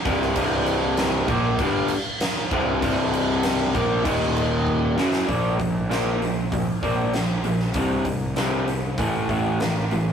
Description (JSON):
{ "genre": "classic rock", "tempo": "97 BPM", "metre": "4/4", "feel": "straight", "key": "unclear", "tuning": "A4 = 441 Hz", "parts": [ { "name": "raw garage guitar", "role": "riff", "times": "0.1-10.1 s", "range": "C2 to Bb3", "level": "-22 LUFS", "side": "equal", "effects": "overdrive" }, { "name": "fuzz picked electric bass", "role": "bass", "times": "0.1-10.1 s", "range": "C1 to C2", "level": "-28 LUFS", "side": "equal", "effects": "overdrive" }, { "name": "huge arena drum kit", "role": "drums", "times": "0.1-10.1 s", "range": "crash cymbal, hi-hat, kick drum, snare drum", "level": "-26 LUFS", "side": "equal", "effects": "none" } ], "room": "moderate studio reverb, RT60 0.5 s", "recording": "rough rehearsal-room recording, warm saturation", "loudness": "-20 LUFS", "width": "side -8 dB against mid", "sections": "0.0-5.3 A section; 5.3-10.1 B section", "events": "drum fill 4.7-5.3", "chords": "0.0 C5; 4.1 Eb5; 5.0 F#5; 5.3 Bb5; 7.8 C5; 9.0 A5" }